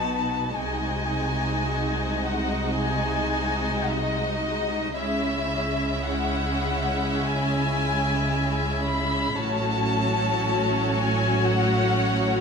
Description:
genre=classical, slow romantic movement for symphony orchestra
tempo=55 BPM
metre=4/4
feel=rubato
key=unclear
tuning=A4 = 442 Hz
part: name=dark chamber violin section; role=melody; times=0.0-12.4 s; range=D#5 to B5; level=-28 LUFS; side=left 4 dB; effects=none
part: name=rich chamber violin section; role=second line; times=0.0-12.4 s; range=E4 to E5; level=-30 LUFS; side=left 2 dB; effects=none
part: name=rich chamber viola section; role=accompaniment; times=0.0-12.4 s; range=F#3 to D#4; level=-28 LUFS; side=equal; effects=none
part: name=dark studio double bass section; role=bass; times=0.0-12.4 s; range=A1 to C#2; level=-30 LUFS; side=right 3 dB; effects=none
part: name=rich chamber cello section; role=bass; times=0.0-12.4 s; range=A2 to C#3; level=-30 LUFS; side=right 2 dB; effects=none
room=moderate scoring stage reverb, RT60 1.8 s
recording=none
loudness=-22 LUFS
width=side -6 dB against mid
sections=0.0-12.4 A section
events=none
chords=0.0 B; 0.5 G#7/B#; 5.0 C#m; 9.4 F#m/A

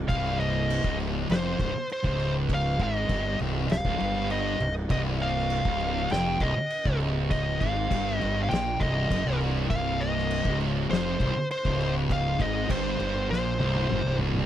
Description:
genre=stoner and doom metal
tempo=100 BPM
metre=4/4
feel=straight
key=C phrygian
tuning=A4 = 440 Hz
part: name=thick fuzz guitar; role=riff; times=0.0-14.5 s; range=C2 to Bb2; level=-28 LUFS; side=equal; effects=distortion
part: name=fuzz fingered electric bass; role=bass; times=0.0-14.5 s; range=C1 to Bb1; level=-31 LUFS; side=equal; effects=overdrive
part: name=fuzz lead guitar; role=melody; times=0.1-14.2 s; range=C5 to G5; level=-30 LUFS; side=equal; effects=distortion, tape echo
part: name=oversized low-tuned drum kit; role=drums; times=0.1-14.5 s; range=crash cymbal, kick drum, snare drum, toms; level=-32 LUFS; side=equal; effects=none
room=little or no reverb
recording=dry, close 1970s-style studio recording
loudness=-24 LUFS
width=side -11 dB against mid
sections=0.0-14.5 A section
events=drum fill 13.3-14.5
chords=0.0 Cm

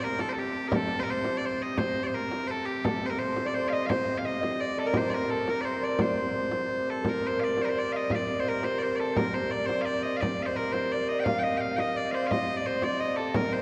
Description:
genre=medieval dance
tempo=171 BPM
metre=3/4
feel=straight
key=C dorian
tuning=A4 = 440 Hz
part: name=loud bright bagpipes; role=melody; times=0.0-13.6 s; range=G4 to G5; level=-33 LUFS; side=equal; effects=none
part: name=rich hurdy-gurdy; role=drone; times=0.0-13.6 s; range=C3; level=-38 LUFS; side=equal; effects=none
part: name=frame drum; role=percussion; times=0.2-13.5 s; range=none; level=-35 LUFS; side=equal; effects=none
part: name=concert harp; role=second line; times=2.8-13.6 s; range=A4 to F5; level=-33 LUFS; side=equal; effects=none
room=wet church reverb, RT60 2.9 s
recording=dark, warm production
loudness=-29 LUFS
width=mono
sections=0.0-7.0 A section; 7.0-13.6 B section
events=none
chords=none

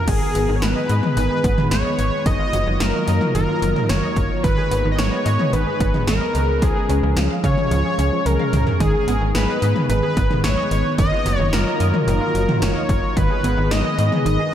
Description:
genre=synth-pop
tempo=110 BPM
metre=4/4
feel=straight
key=unclear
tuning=A4 = 440 Hz
part: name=wide unison lead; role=melody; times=0.0-14.5 s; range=Ab4 to Eb5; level=-22 LUFS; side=equal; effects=diffuse ambient delay
part: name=lush unison pad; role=sustained chords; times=0.0-14.5 s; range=Eb3 to Ab4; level=-25 LUFS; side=equal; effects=chorus
part: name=wide unison pluck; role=arpeggios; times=0.1-14.5 s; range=Eb3 to F5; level=-27 LUFS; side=right 2 dB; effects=lush chorus, diffuse ambient delay
part: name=slap-like FM bass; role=bass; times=0.1-14.4 s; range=Gb1 to Db3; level=-21 LUFS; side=equal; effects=none
part: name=80s electronic pad drums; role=drums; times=0.1-14.4 s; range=crash cymbal, hi-hat, kick drum, snare drum, toms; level=-22 LUFS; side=equal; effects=gated reverb on snare and toms, overdrive
room=wet cathedral reverb, RT60 5.7 s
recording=dreamy mix soaked in reverb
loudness=-16 LUFS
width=side -10 dB against mid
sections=0.1-14.5 A section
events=drum fill 8.3-8.8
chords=0.1 Abm; 2.3 Ebmadd9/Gb; 4.4 Abm; 6.3 Db; 8.8 Abm; 11.0 Ebmadd9/Gb; 13.2 Abm

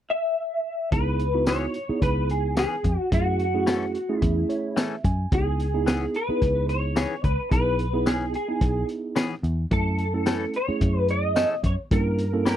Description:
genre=straight-eighth soul blues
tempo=109 BPM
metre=4/4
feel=swing 54% on 16ths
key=C# minor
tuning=A4 = 439 Hz
part: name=electric guitar through a small old amp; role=melody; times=0.1-12.6 s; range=F#4 to E5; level=-26 LUFS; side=left 1 dB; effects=ensemble chorus
part: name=tine electric piano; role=accompaniment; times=0.9-12.6 s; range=A3 to G#5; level=-28 LUFS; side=right 4 dB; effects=none
part: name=vintage muted picked electric bass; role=bass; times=0.9-12.6 s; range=B1 to G2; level=-26 LUFS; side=equal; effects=none
part: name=crunchy breakbeat drum kit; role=drums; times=0.9-12.6 s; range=hi-hat, kick drum, snare drum, tambourine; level=-26 LUFS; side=equal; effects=none
part: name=direct-recorded clean electric guitar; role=stabs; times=1.5-12.6 s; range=E3 to A4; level=-29 LUFS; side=left 7 dB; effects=phaser
room=little or no reverb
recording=dry, close 1970s-style studio recording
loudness=-22 LUFS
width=side -11 dB against mid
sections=0.9-12.6 A section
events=tine electric piano fill 4.2-5.3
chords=0.0 N.C.; 0.9 C#m7; 3.1 F#m7; 5.3 C#m7; 9.7 F#m7; 11.9 Gdim7

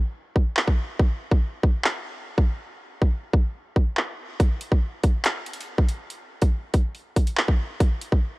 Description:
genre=hip hop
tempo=141 BPM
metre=4/4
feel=half-time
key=none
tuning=none
part: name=drill drum kit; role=drums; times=0.4-8.2 s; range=handclaps, hi-hat, kick drum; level=-21 LUFS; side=equal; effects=none
room=little or no reverb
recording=worn, warbling old tape, cassette tape, warbly pitch drift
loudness=-21 LUFS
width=side -23 dB against mid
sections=0.0-8.4 A section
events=break 0.0-4.4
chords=none

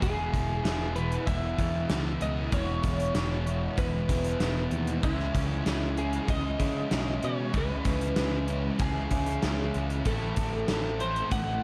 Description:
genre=rock, shoegaze and dream pop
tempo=96 BPM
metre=4/4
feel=straight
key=E major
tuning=A4 = 444 Hz
part: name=twelve-string electric guitar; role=melody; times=0.0-11.6 s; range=E4 to F#5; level=-36 LUFS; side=equal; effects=lush chorus, tape echo
part: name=crunchy overdriven guitar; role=riff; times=0.0-11.6 s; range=E2 to E4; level=-38 LUFS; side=equal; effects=reverse reverb
part: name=thick fuzz guitar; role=riff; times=0.0-11.6 s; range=E2 to C#4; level=-36 LUFS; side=equal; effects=distortion, subtle chorus
part: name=modern bright picked electric bass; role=bass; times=0.0-11.6 s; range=E1 to C#3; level=-34 LUFS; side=equal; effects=none
part: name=gated 80s drum kit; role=drums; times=0.0-11.5 s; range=hi-hat, kick drum, snare drum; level=-33 LUFS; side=equal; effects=none
room=light reverb, small room ambience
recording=dark, warm production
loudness=-29 LUFS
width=mono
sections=0.0-11.6 A section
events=none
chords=0.0 E; 5.0 C#m7; 10.1 Am

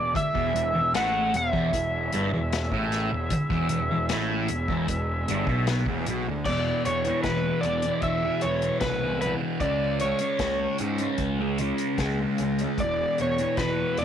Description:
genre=psychedelic rock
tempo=76 BPM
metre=4/4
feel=straight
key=E mixolydian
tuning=A4 = 439 Hz
part: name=overdriven slide guitar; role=melody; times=0.0-14.0 s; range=B4 to F#5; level=-27 LUFS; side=equal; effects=tape echo
part: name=bright tonewheel organ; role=sustained chords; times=0.0-14.0 s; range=C#3 to G#4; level=-40 LUFS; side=right 11 dB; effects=slow rotary speaker
part: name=thick fuzz guitar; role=riff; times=0.0-14.0 s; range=E2 to C#4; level=-27 LUFS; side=equal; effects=distortion, phaser
part: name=fuzz picked electric bass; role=bass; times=0.0-14.0 s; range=E1 to G#2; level=-32 LUFS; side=equal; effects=overdrive
part: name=vintage drum kit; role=drums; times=0.2-14.0 s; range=crash cymbal, hi-hat, kick drum, snare drum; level=-33 LUFS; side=left 3 dB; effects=none
room=light reverb, studio reverb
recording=1960s-style stereo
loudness=-23 LUFS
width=side -9 dB against mid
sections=0.0-6.5 A section; 6.5-14.0 B section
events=none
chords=0.0 E; 9.6 C#; 12.8 E

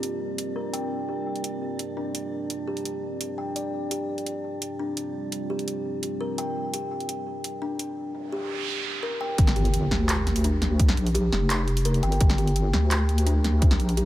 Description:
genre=half-time drum and bass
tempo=170 BPM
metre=4/4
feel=half-time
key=G minor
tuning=A4 = 443 Hz
part: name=deep dark ambient pad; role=sustained chords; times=0.0-14.1 s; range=G3 to Bb4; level=-37 LUFS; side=right 1 dB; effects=chorus, built-in reverb, sidechain pumping
part: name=kalimba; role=arpeggios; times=0.0-14.1 s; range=D4 to G5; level=-31 LUFS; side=left 1 dB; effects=low-pass filter, tape echo
part: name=drum and bass drum kit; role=drums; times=0.0-14.0 s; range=handclaps, hi-hat, snare drum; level=-29 LUFS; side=equal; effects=none
part: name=metallic inharmonic drone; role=texture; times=0.0-8.0 s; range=D4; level=-37 LUFS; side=equal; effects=chorus, built-in reverb
part: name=noise sweep and impact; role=sound effects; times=8.3-10.8 s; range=none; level=-30 LUFS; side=equal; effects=none
part: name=deep soft wobble bass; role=bass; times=9.4-14.1 s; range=F1 to D2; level=-23 LUFS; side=equal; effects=chorus
part: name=electronic kick drum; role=drums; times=9.4-13.7 s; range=none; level=-19 LUFS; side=equal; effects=none
room=light reverb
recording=none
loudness=-24 LUFS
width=side -14 dB against mid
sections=0.0-9.4 A section; 9.4-14.1 B section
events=filter sweep on kalimba 0.0-9.4; noise sweep 8.3-9.4; drop 9.4-14.1; impact 9.4-10.8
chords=0.0 Gm

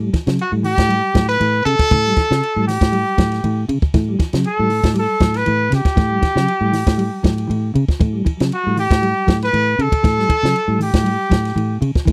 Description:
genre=afrobeat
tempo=118 BPM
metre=4/4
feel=swing 53% on 16ths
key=A mixolydian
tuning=A4 = 435 Hz
part: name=mellow electric guitar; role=arpeggios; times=0.0-12.1 s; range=C#3 to G3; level=-26 LUFS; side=equal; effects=tremolo
part: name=fingered electric bass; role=bass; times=0.0-12.1 s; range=A2 to C#3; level=-21 LUFS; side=equal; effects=none
part: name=compact cocktail drum kit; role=drums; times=0.1-12.1 s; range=hi-hat, kick drum, ride cymbal, snare drum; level=-20 LUFS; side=equal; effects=none
part: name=warm trumpet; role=melody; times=0.4-11.8 s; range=F#4 to B4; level=-21 LUFS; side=equal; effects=none
room=little or no reverb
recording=dry, close 1970s-style studio recording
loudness=-17 LUFS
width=mono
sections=0.0-12.1 A section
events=none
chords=0.0 A7

